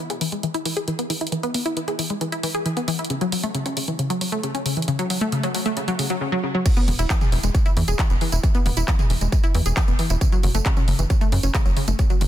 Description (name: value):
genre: uplifting trance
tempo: 135 BPM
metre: 4/4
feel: straight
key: unclear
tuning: A4 = 439 Hz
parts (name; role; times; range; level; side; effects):
- wide unison pluck; arpeggios; 0.1-12.3 s; C#3 to G#4; -24 LUFS; left 1 dB; sidechain pumping, ping-pong delay
- big-room dance drum kit; drums; 0.1-12.3 s; crash cymbal, handclaps, hi-hat, tambourine, toms; -28 LUFS; right 1 dB; high-pass filter on hats, small room ambience, high-pass filter on toms, high-pass filter on perc, high-pass filter on cymbals, high-pass filter on snare
- electronic kick drum; drums; 6.7-12.1 s; none; -19 LUFS; equal; small room ambience
- tight sequencer bass; bass; 6.9-12.3 s; E1 to F#2; -22 LUFS; equal; sidechain pumping
room: light reverb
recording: dense, heavily limited modern master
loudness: -19 LUFS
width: side -12 dB against mid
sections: 0.0-6.7 A section; 6.7-12.3 B section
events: build-up 0.0-6.7; drop 6.7-12.3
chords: 0.0 E; 3.1 F#m; 6.7 N.C.; 10.2 F#5